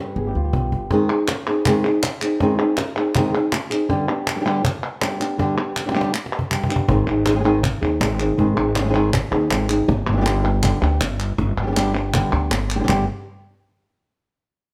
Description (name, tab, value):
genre	flamenco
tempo	160 BPM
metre	4/4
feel	straight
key	unclear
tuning	A4 = 441 Hz
part	flamenco guitar	melody	0.0-13.0 s	G2 to Ab4	-23 LUFS	equal	none
part	upright bass	bass	0.2-0.9, 6.9-13.1 s	G1 to Eb2	-25 LUFS	equal	none
part	cajon	percussion	0.5-13.0 s	none	-27 LUFS	equal	none
part	palmas hand claps	percussion	1.1-13.0 s	none	-29 LUFS	equal	none
room	moderate stone room reverb, RT60 1.0 s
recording	none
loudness	-20 LUFS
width	mono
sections	0.9-12.9 A section; 12.9-14.4 B section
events	drum fill 0.0-0.9, 5.8-6.9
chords	0.0 G; 0.9 Ab; 3.9 G; 6.9 Ab; 9.9 G; 12.9 N.C.